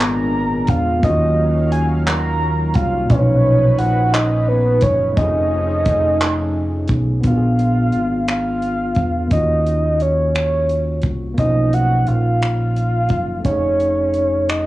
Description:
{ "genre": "slow six-eight R&B", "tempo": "58 BPM (dotted quarters)", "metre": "6/8", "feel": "straight", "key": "Eb minor", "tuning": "A4 = 440 Hz", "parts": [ { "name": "soft octave-layered synth lead", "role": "melody", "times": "0.0-14.7 s", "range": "B4 to Bb5", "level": "-19 LUFS", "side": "right 1 dB", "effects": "chorus, tremolo, cassette tape" }, { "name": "overdriven tine electric piano", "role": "accompaniment", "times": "0.0-14.7 s", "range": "A#2 to Ab4", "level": "-22 LUFS", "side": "left 2 dB", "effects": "cassette tape" }, { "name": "lush unison pad", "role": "sustained chords", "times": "0.0-7.2 s", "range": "Bb2 to F5", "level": "-27 LUFS", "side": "equal", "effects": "chorus, cassette tape" }, { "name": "deep dub fingered electric bass", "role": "bass", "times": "0.0-14.7 s", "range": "F1 to Fb2", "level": "-19 LUFS", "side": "right 1 dB", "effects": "none" }, { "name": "damped 70s drum kit", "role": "drums", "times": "0.0-14.7 s", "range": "finger snaps, handclaps, hi-hat, kick drum", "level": "-20 LUFS", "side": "equal", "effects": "cassette tape" } ], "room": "light reverb", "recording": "home recording on cassette, small room ambience", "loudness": "-15 LUFS", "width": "side -16 dB against mid", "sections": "0.0-7.2 A section; 7.2-14.7 B section", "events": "none", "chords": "0.0 Bb7b9; 1.0 Ebm9; 3.1 Bmaj9#11; 5.2 F7alt; 7.2 Bb7b9; 9.3 Ebm9; 11.4 Bmaj9#11; 13.4 F7alt" }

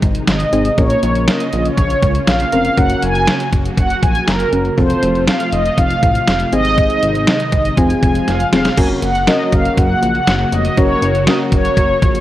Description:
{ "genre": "synth-pop", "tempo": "120 BPM", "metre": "4/4", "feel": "straight", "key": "unclear", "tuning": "A4 = 439 Hz", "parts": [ { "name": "string machine, violas", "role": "sustained chords", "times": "0.0-12.2 s", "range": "C3 to Gb4", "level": "-22 LUFS", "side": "equal", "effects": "ensemble chorus" }, { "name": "chorused synth bass", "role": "bass", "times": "0.0-12.2 s", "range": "F1 to Db2", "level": "-19 LUFS", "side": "equal", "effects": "none" }, { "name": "detuned 8-bit digital drum machine", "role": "drums", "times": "0.0-12.2 s", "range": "crash cymbal, hi-hat, kick drum, snare drum", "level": "-16 LUFS", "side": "equal", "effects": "none" }, { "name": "mellow synth brass", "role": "melody", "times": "0.3-12.2 s", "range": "Bb4 to Ab5", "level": "-17 LUFS", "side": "equal", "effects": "chorus, slapback echo" }, { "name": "soft electric-piano-like synth keys", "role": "accompaniment", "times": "0.5-11.9 s", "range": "Bb3 to Bb4", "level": "-19 LUFS", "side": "left 1 dB", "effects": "chorus" } ], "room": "light reverb", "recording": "worn, warbling old tape, cassette tape, warbly pitch drift", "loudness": "-12 LUFS", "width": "side -14 dB against mid", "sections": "0.0-8.8 A section; 8.8-12.2 B section", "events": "drum fill 8.3-8.8", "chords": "0.0 Ab; 0.8 Bbmadd9; 2.8 Gb; 4.8 F; 6.5 Ab; 7.8 Fm; 8.8 Gb" }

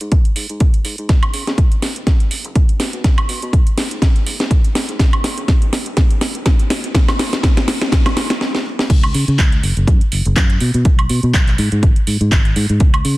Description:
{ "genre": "filtered disco house", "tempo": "123 BPM", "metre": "4/4", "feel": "swing 55% on 16ths", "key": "unclear", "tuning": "A4 = 440 Hz", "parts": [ { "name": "fingered electric bass", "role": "bass", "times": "0.0-13.2 s", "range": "F#1 to C#3", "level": "-18 LUFS", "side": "equal", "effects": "sidechain pumping, high-pass filter, low-pass filter" }, { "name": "house drum kit", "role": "drums", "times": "0.0-13.2 s", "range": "crash cymbal, handclaps, hi-hat, snare drum, woodblock", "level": "-20 LUFS", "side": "equal", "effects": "studio ambience" }, { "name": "electronic kick drum", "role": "drums", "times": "0.1-12.9 s", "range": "none", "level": "-13 LUFS", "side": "equal", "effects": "studio ambience" } ], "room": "light reverb", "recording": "dense, heavily limited modern master", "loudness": "-13 LUFS", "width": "side -19 dB against mid", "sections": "0.0-8.9 A section; 8.9-13.2 B section", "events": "build-up 0.0-8.9; drum fill 1.1-8.4, 8.4-8.9; stop 8.4-8.9; drop 8.9-13.2", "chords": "none" }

